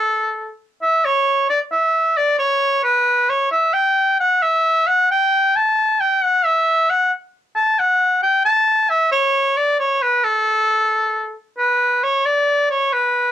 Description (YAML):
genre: medieval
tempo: 89 BPM (dotted quarters)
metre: 6/8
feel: straight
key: A mixolydian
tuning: A4 = 436 Hz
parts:
  - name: clear shawm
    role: solo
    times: 0.0-13.3 s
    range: A4 to A5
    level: -15 LUFS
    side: equal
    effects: none
room: light reverb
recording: home recording on cassette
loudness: -15 LUFS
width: side -11 dB against mid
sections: 0.8-11.6 A section; 11.6-13.3 B section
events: none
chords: none